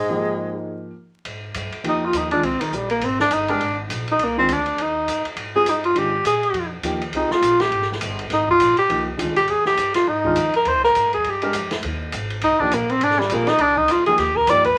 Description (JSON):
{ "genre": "modal jazz", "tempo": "204 BPM", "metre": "4/4", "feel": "swing 60% on 8ths", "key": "Ab lydian", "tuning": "A4 = 440 Hz", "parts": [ { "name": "warm tenor saxophone", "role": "melody", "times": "0.0-14.8 s", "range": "Eb3 to D5", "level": "-20 LUFS", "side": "equal", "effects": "none" }, { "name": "clear trombone", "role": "second line", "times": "0.0-0.9 s", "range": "Ab2", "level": "-30 LUFS", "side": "equal", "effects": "none" }, { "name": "upright bass", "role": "bass", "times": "0.0-14.8 s", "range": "G1 to Bb2", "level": "-34 LUFS", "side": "equal", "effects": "none" }, { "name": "dark baby grand piano", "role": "accompaniment", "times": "0.1-14.6 s", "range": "Eb3 to Bb4", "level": "-28 LUFS", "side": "equal", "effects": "none" }, { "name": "open jazz drum kit", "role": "drums", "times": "1.2-14.7 s", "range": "hi-hat, kick drum, ride cymbal, snare drum", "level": "-31 LUFS", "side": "equal", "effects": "none" } ], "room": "wet small room ambience, RT60 0.5 s", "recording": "vinyl crackle", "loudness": "-20 LUFS", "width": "mono", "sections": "0.0-1.3 A section; 1.3-14.8 B section", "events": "break 0.1-1.3; tenor saxophone solo 1.3-14.8", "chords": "0.0 Abmaj7sus2; 1.3 Abmaj9" }